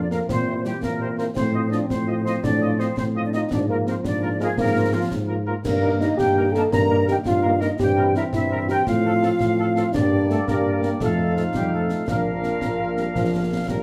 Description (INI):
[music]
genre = military-style march for wind band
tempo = 112 BPM (dotted quarters)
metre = 6/8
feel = straight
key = Bb major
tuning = A4 = 438 Hz
[part]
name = dark euphonium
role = second line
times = 0.0-13.8 s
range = F3 to Bb4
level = -27 LUFS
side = equal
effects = none
[part]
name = flute section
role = second line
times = 0.0-13.8 s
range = F4 to Bb5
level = -31 LUFS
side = equal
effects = none
[part]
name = dark trombone section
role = sustained chords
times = 0.0-13.8 s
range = Eb3 to Eb4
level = -33 LUFS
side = equal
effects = none
[part]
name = mellow tuba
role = bass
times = 0.0-13.8 s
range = Bb1 to Bb2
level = -27 LUFS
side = equal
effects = none
[part]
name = warm trumpet section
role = melody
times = 0.1-13.8 s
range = A4 to F5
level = -35 LUFS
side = equal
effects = none
[part]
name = dark French horn section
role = accompaniment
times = 0.1-13.8 s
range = F3 to G4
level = -33 LUFS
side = equal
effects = none
[part]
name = concert snare drum, concert bass drum and clash cymbals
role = drums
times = 0.1-13.8 s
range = none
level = -32 LUFS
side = equal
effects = none
[sound]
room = moderate large studio reverb, RT60 1.0 s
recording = none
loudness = -22 LUFS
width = mono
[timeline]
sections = 0.0-13.8 A section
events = none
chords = 0.3 C7/Bb; 1.4 F7/A; 3.5 Bb7/Ab; 5.7 Eb/G; 7.8 C7/G; 8.9 F/A; 9.9 Gm; 11.0 F7; 12.1 Bb